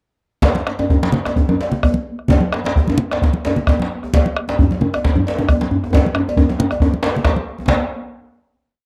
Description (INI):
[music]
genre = west african traditional, West African drum ensemble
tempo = 128-142 BPM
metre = 4/4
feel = swing 54% on 16ths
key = none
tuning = none
[part]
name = bombo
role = percussion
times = 0.4-7.9 s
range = none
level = -20 LUFS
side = equal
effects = none
[part]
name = congas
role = percussion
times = 0.4-7.9 s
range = none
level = -23 LUFS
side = equal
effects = none
[part]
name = cowbell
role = percussion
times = 0.4-7.9 s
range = none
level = -28 LUFS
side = equal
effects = none
[part]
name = djembe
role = percussion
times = 0.4-7.9 s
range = none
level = -25 LUFS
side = equal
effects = none
[part]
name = djembe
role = percussion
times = 0.4-7.9 s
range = none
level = -22 LUFS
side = equal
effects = none
[sound]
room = light reverb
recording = dry, close 1970s-style studio recording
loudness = -17 LUFS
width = mono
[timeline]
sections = 0.4-7.7 A section; 7.7-8.9 final hit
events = speeding up 0.4-8.9; drum fill 5.9-7.7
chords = none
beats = | 0.42 0.89 1.36 1.83 | 2.29 2.75 3.22 3.67 | 4.13 4.59 5.04 5.49 | 5.93 6.38 6.82 7.25 | 7.68